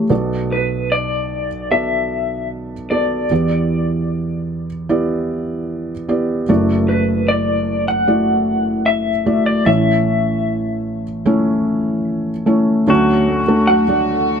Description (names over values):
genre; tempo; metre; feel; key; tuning
acoustic folk-pop ballad; 75 BPM; 4/4; straight; D major; A4 = 443 Hz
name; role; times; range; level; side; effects
felt-muted upright piano; accompaniment; 0.0-14.4 s; F#1 to E5; -17 LUFS; right 1 dB; none
electric guitar through a small old amp; melody; 0.5-14.4 s; B4 to F#5; -19 LUFS; left 2 dB; tremolo
pedal steel guitar; second line; 12.9-14.4 s; F#4; -20 LUFS; left 3 dB; none
warm chamber string section; sustained chords; 12.9-14.4 s; D3 to F#4; -27 LUFS; left 3 dB; none
felt-muted upright piano; arpeggios; 12.9-14.4 s; F#3 to C#4; -22 LUFS; right 5 dB; none
room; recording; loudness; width
little or no reverb; dark, warm production; -15 LUFS; side -7 dB against mid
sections
0.1-12.9 A section; 12.9-14.4 B section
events
none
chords
0.1 Bm7; 3.3 Em7; 6.5 Dadd9/F#; 9.7 A; 12.9 Dmaj7